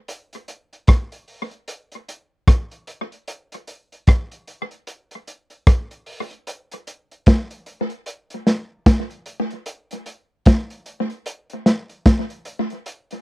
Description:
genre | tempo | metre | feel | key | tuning
reggae | 75 BPM | 4/4 | swing 60% on 16ths | none | none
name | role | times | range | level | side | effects
crunchy breakbeat drum kit | drums | 0.1-13.2 s | hi-hat, kick drum, rim click, snare drum | -15 LUFS | equal | tape echo
room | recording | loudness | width
light reverb | dry, close 1970s-style studio recording | -17 LUFS | side -17 dB against mid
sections
0.0-6.5 A section; 6.5-13.2 B section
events
none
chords
none

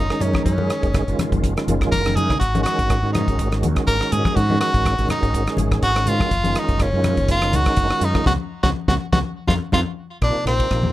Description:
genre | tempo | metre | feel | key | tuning
electric jazz fusion | 123 BPM | 4/4 | swing 54% on 16ths | unclear | A4 = 440 Hz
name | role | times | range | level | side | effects
edgy tenor saxophone | melody | 0.0-10.9 s | C4 to Bb4 | -22 LUFS | equal | none
bright tonewheel organ | accompaniment | 0.0-10.9 s | C3 to Ab4 | -25 LUFS | right 2 dB | slow rotary speaker, chorus vibrato
mellow fretless electric bass | bass | 0.0-10.9 s | Gb1 to Ab2 | -22 LUFS | equal | none
damped 70s drum kit | drums | 0.1-10.8 s | hi-hat, kick drum, ride cymbal, rim click, snare drum | -23 LUFS | equal | none
congas | percussion | 0.2-10.9 s | none | -26 LUFS | left 4 dB | none
room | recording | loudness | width
light reverb | none | -17 LUFS | side -15 dB against mid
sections
0.0-10.2 A section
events
drum fill 1.9-2.4, 8.3-10.2; band accent 8.3-10.2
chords
0.0 Gbsus2; 2.4 Ab5; 6.3 Gbsus2; 8.3 Db7(no3); 9.2 F5; 10.2 Bbsus4

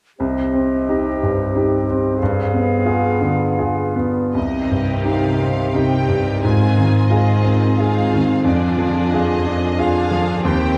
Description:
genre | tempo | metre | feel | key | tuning
classical | 89 BPM | 3/4 | rubato | C minor | A4 = 444 Hz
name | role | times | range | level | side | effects
clear baby grand piano | melody | 0.2-10.8 s | C2 to Ab4 | -20 LUFS | equal | none
clear clarinet | second line | 0.2-4.0 s | G4 to Ab4 | -30 LUFS | equal | none
concert flute | second line | 0.2-4.0 s | Eb5 to F5 | -30 LUFS | equal | none
warm bassoon | accompaniment | 0.2-4.0 s | B3 to C4 | -29 LUFS | equal | none
rich symphonic violin section | melody | 4.3-10.8 s | D5 to Ab5 | -32 LUFS | equal | none
rich symphonic violin section | second line | 4.4-10.8 s | Eb4 to C5 | -29 LUFS | equal | none
clear symphonic viola section | accompaniment | 4.4-10.8 s | D3 to D4 | -27 LUFS | equal | none
rich symphonic cello section | bass | 4.4-10.8 s | Eb2 to C3 | -24 LUFS | equal | none
room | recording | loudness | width
wet recital hall reverb, RT60 1.8 s | dark, warm production | -18 LUFS | mono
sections
0.2-4.4 A section; 4.4-10.8 B section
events
none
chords
0.2 Cm; 2.2 G7b9; 4.4 Cm; 6.4 Ab6; 8.4 Ddim/F

